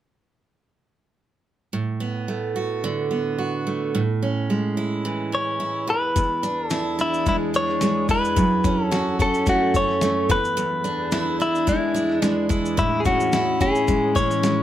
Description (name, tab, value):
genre	acoustic pop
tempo	109 BPM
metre	4/4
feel	swing 55% on 16ths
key	unclear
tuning	A4 = 440 Hz
part	picked steel-string acoustic guitar	accompaniment	1.7-14.6 s	E2 to F#4	-23 LUFS	right 3 dB	none
part	direct-recorded clean electric guitar	melody	5.3-14.6 s	E4 to C#5	-22 LUFS	left 2 dB	plate reverb
part	ethereal airy pad	sustained chords	6.5-14.6 s	E2 to A4	-29 LUFS	left 4 dB	ensemble chorus, built-in reverb
part	dusty soul sampler-style drum kit	drums	6.2-14.6 s	kick drum, shaker, snare drum	-25 LUFS	left 2 dB	overdrive
room	moderate small room reverb, RT60 0.6 s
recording	none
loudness	-20 LUFS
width	side -12 dB against mid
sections	1.7-6.2 A section; 6.2-14.6 B section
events	none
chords	1.7 Bm/A; 4.0 C#m/A; 5.9 N.C.; 6.2 E7; 8.4 F#m7; 10.3 E7; 12.8 Amaj7